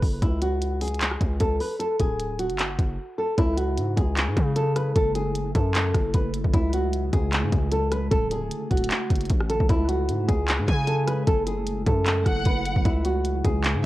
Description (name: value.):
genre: hip hop, trap.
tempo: 152 BPM.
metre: 4/4.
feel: half-time.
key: C# phrygian.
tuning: A4 = 441 Hz.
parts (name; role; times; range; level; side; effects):
distorted 808-style bass; bass; 0.0-13.8 s; D1 to C#3; -26 LUFS; equal; distortion.
minimal click drum kit; drums; 0.0-13.7 s; handclaps, hi-hat, kick drum, rim click; -24 LUFS; equal; cassette tape.
nylon-string guitar; melody; 0.2-13.9 s; E4 to B4; -27 LUFS; equal; cassette tape, analog delay.
glassy FM pad; sustained chords; 3.7-13.9 s; C#3 to F#4; -33 LUFS; equal; ensemble chorus, built-in reverb, cassette tape.
rich studio violin section; second line; 10.7-13.9 s; F#5 to G#5; -31 LUFS; equal; cassette tape, analog delay.
room: digital ambience.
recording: home recording on cassette.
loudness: -21 LUFS.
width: side -16 dB against mid.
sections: 0.0-3.4 A section; 3.4-13.9 B section.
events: break 3.0-3.4.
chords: 0.2 C#5; 1.8 D; 3.4 C#m; 5.0 F#m7; 6.5 C#m; 8.1 D; 9.7 C#m; 11.3 F#m7; 12.9 C#m.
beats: | 0.22 0.61 1.01 1.41 | 1.80 2.19 2.59 2.98 | 3.38 3.77 4.17 4.56 | 4.96 5.35 5.75 6.14 | 6.54 6.93 7.33 7.72 | 8.12 8.51 8.90 9.30 | 9.69 10.09 10.48 10.88 | 11.27 11.67 12.06 12.46 | 12.85 13.25 13.64.